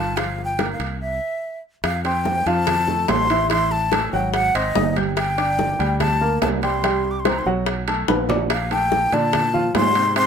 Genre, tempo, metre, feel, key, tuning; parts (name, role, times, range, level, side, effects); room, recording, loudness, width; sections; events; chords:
Afro-Cuban jazz; 144 BPM; 4/4; straight; F major; A4 = 440 Hz
breathy jazz flute; melody; 0.0-10.3 s; Eb5 to D6; -22 LUFS; left 1 dB
warm baby grand piano; accompaniment; 0.0-10.3 s; C3 to G6; -24 LUFS; equal
fretless electric bass; bass; 0.0-10.3 s; G1 to Bb2; -26 LUFS; equal
bongos; percussion; 0.2-10.3 s; -26 LUFS; left 8 dB
congas; percussion; 0.2-10.3 s; -29 LUFS; right 2 dB
timbales; percussion; 0.2-10.3 s; -26 LUFS; right 5 dB
moderate club reverb, RT60 0.6 s; minimal, uncompressed stereo recording; -18 LUFS; side -7 dB against mid
0.0-1.8 A section; 1.8-10.3 B section
stop 1.0-1.8; drum fill 8.1-8.5
0.2 Gm7; 1.0 C; 1.8 Fmaj7; 3.5 A5; 4.3 Ab7; 5.2 Gmadd9; 6.8 C5; 7.7 B5; 8.5 Bbmaj9